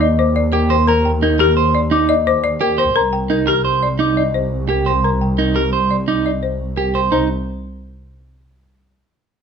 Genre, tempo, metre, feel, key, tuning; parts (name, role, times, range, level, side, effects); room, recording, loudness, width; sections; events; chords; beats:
classical, minimalist pattern music; 173 BPM; 6/4; straight; C minor; A4 = 440 Hz
folk marimba with hard mallets; melody; 0.0-7.3 s; G4 to G5; -20 LUFS; left 7 dB
celesta; arpeggios; 0.0-7.3 s; Eb5 to D6; -22 LUFS; left 6 dB
electric guitar at the edge of break-up; arpeggios; 0.0-7.3 s; Eb4 to C5; -18 LUFS; right 8 dB
rich symphonic double bass section; bass; 0.0-7.3 s; C2 to Eb2; -19 LUFS; equal
moderate large studio reverb, RT60 1.1 s; close, detailed microphones; -14 LUFS; side -6 dB against mid
0.0-7.1 A section; 7.1-9.4 B section
0.0 Ebmaj7; 3.0 Cm7
0.18 0.53 | 0.88 1.22 1.57 1.92 2.26 2.61 | 2.96 3.30 3.65 4.00 4.34 4.69 | 5.04 5.38 5.73 6.08 6.43 6.77 | 7.12